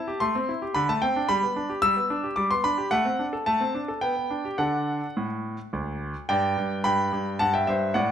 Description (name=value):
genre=classical-period piano sonatina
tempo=108 BPM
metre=3/4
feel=uneven beats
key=G major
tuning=A4 = 440 Hz
part: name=clear concert grand piano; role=solo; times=0.0-8.1 s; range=D2 to E6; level=-23 LUFS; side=equal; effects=none
room=moderate recital hall reverb, RT60 1.4 s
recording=none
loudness=-23 LUFS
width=side -9 dB against mid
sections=0.0-6.3 A section; 6.3-8.1 A section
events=none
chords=0.0 Am7; 0.8 D5; 1.3 G; 2.9 D7/A; 4.0 G/B; 4.6 D; 6.3 G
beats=0.22 0.76 | 1.30 1.84 2.38 | 2.92 3.47 4.03 | 4.60 5.17 5.74 | 6.30 6.85 7.40 | 7.94